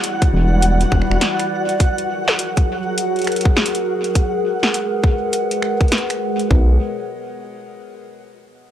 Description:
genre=IDM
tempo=102 BPM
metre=4/4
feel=swing 62% on 16ths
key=unclear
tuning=A4 = 440 Hz
part: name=warbly tape-like pad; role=sustained chords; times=0.0-6.8 s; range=E3 to F#5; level=-22 LUFS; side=equal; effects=chorus, built-in reverb, phaser
part: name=electro analog drum machine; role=drums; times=0.0-6.5 s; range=finger snaps, hi-hat, snare drum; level=-20 LUFS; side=equal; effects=none
part: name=flickering grainy texture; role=texture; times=0.0-6.5 s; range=F#4 to F#5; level=-26 LUFS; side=left 1 dB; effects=built-in reverb
part: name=electronic kick drum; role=drums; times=0.2-6.7 s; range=none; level=-15 LUFS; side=equal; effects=none
part: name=dark detuned saw bass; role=bass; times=0.3-1.2, 6.5-6.8 s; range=E1 to B1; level=-15 LUFS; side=equal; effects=tube saturation
room=digital ambience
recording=dry, gritty hardware recording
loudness=-15 LUFS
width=side -11 dB against mid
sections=0.0-6.5 A section; 6.5-8.7 B section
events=filter sweep on ambient pad 0.0-6.5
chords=0.0 Em7; 1.8 F#; 4.2 G#m7; 6.5 B69

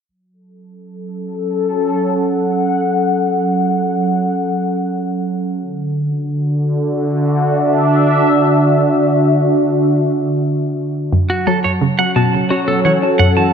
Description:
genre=ambient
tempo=87 BPM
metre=4/4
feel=straight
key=F# minor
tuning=A4 = 438 Hz
part: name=sweeping resonant pad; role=sustained chords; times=0.1-13.5 s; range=D3 to F#5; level=-14 LUFS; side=equal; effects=chorus
part: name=hollow square pluck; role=riff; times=11.1-13.5 s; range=F#2 to C#4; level=-16 LUFS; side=left 1 dB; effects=chorus, phaser, analog delay
part: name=semi-hollow electric guitar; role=arpeggios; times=11.3-13.5 s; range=F#4 to A5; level=-17 LUFS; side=right 3 dB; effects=auto-pan, analog delay
room=wet plate reverb, RT60 3.2 s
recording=dreamy mix soaked in reverb, cassette tape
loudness=-13 LUFS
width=side -7 dB against mid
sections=0.1-11.1 A section; 11.1-13.5 B section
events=none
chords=0.1 F#m; 5.6 Dadd9; 11.1 F#m

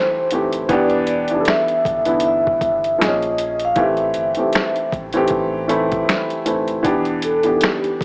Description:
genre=lo-fi hip hop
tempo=78 BPM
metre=4/4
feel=swing 59% on 16ths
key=A minor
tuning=A4 = 440 Hz
part: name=vibraphone with soft mallets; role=melody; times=0.0-8.0 s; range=G4 to F5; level=-21 LUFS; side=equal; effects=none
part: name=warm upright piano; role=accompaniment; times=0.0-8.0 s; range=E3 to A4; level=-22 LUFS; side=equal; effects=cassette tape
part: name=sub bass with octave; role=bass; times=0.3-8.0 s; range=D1 to Bb1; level=-41 LUFS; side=equal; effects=none
part: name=boom bap sampler-style drum kit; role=drums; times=0.3-8.0 s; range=finger snaps, hi-hat, kick drum, snare drum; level=-25 LUFS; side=equal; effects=none
room=light reverb, small room ambience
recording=dry, gritty hardware recording, cassette tape, small speaker sound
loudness=-18 LUFS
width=mono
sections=0.0-8.0 A section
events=none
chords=0.0 Am7; 0.7 Em7; 3.0 Bbm7; 3.8 Am7; 6.8 Em7

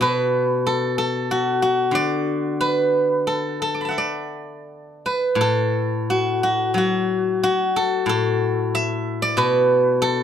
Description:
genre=chinese traditional, Chinese solo plucked strings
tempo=82-94 BPM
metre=4/4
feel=rubato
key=D gong mode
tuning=A4 = 444 Hz
part: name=steel-string zither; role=solo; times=0.0-10.2 s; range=A2 to D6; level=-18 LUFS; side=equal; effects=none
room=light reverb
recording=none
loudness=-18 LUFS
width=side -8 dB against mid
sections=0.0-5.4 A section; 5.4-10.2 B section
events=none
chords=none

